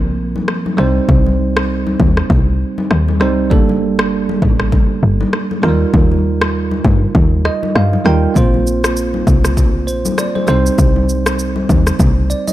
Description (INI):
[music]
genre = afrobeats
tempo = 99 BPM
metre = 4/4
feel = swing 58% on 16ths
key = unclear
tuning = A4 = 440 Hz
[part]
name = bell-like tine electric piano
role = accompaniment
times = 0.0-12.5 s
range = F3 to G5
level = -17 LUFS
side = right 4 dB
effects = none
[part]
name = woody log drum bass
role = bass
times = 0.0-12.3 s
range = G1 to G2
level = -15 LUFS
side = left 1 dB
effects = none
[part]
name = congas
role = percussion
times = 0.4-12.5 s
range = none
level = -22 LUFS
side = left 3 dB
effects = none
[part]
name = afro-pop drum kit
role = drums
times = 0.5-12.5 s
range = kick drum, rim click, shaker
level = -16 LUFS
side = left 1 dB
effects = none
[sound]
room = little or no reverb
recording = none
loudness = -12 LUFS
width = side -14 dB against mid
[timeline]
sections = 0.0-12.5 A section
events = break 0.0-8.4; tine electric piano fill 7.1-8.4, 12.0-12.5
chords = 0.0 Bbsus2; 0.8 Cm; 3.5 Gmadd9; 5.6 Ebadd9; 8.4 Bbsus2; 10.5 Cm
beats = 0.48 | 1.09 1.69 2.30 2.91 | 3.51 4.12 4.72 5.33 | 5.94 6.54 7.15 7.75 | 8.36 8.97 9.57 10.18 | 10.79 11.39 12.00